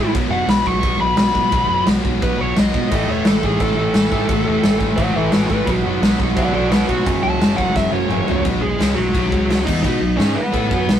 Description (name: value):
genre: punk rock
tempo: 173 BPM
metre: 4/4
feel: straight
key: unclear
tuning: A4 = 435 Hz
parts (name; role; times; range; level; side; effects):
- bluesy overdriven lead guitar; melody; 0.0-11.0 s; F#3 to C#6; -21 LUFS; equal; distortion
- overdriven semi-hollow guitar; riff; 0.0-11.0 s; F#2 to B4; -22 LUFS; left 2 dB; none
- scooped high-gain guitar; riff; 0.0-11.0 s; F#2 to B4; -30 LUFS; right 2 dB; none
- picked electric bass; bass; 0.0-11.0 s; E1 to B2; -24 LUFS; right 1 dB; none
- raw garage drum kit; drums; 0.1-11.0 s; crash cymbal, kick drum, snare drum, toms; -19 LUFS; equal; none
- cranked stack guitar; riff; 2.9-8.4 s; F#2 to B3; -24 LUFS; right 4 dB; overdrive
room: little or no reverb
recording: rough rehearsal-room recording, warm saturation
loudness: -15 LUFS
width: side -10 dB against mid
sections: 0.0-8.5 A section; 8.5-11.0 B section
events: lead electric guitar solo 0.0-8.5; drum fill 7.8-8.5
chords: 0.1 B5; 2.9 A5; 5.7 B5; 7.1 F#5; 8.5 B5; 9.3 C#5; 9.7 B